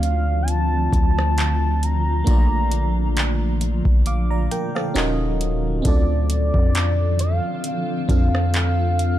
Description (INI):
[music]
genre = contemporary R&B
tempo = 67 BPM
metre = 4/4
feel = swing 54% on 16ths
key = D minor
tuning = A4 = 439 Hz
[part]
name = gliding portamento lead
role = melody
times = 0.0-9.2 s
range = D5 to Bb5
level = -26 LUFS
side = equal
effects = chorus, tape echo
[part]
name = FM electric piano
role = accompaniment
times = 0.0-9.2 s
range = A3 to D6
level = -28 LUFS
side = right 1 dB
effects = chorus
[part]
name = granular cloud pad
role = sustained chords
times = 0.0-9.2 s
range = Bb2 to A4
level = -27 LUFS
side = equal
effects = built-in reverb
[part]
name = long sustained 808-style bass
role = bass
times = 0.0-9.2 s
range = Eb1 to F2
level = -20 LUFS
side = equal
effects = none
[part]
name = booming analog drum machine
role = drums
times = 0.0-9.2 s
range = handclaps, hi-hat, kick drum, rim click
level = -20 LUFS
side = equal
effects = none
[sound]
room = little or no reverb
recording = dark, warm production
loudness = -18 LUFS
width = side -13 dB against mid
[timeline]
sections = 0.0-9.2 A section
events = none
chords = 0.0 Dm7; 2.3 Bbmaj7; 5.0 Ebm7; 5.9 Dm7